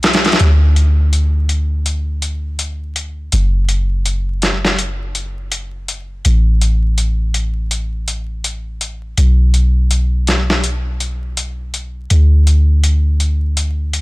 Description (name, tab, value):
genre	trip hop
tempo	82 BPM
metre	4/4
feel	swing 59% on 16ths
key	unclear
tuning	A4 = 440 Hz
part	soft 808-style bass	bass	0.0-14.0 s	F#1 to D2	-14 LUFS	equal	none
part	boom bap sampler-style drum kit	drums	0.0-14.0 s	hi-hat, snare drum	-17 LUFS	left 1 dB	high-pass filter on hats, small room ambience, high-pass filter on snare
room	digital ambience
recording	vinyl crackle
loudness	-13 LUFS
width	side -21 dB against mid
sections	0.0-14.0 A section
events	none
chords	none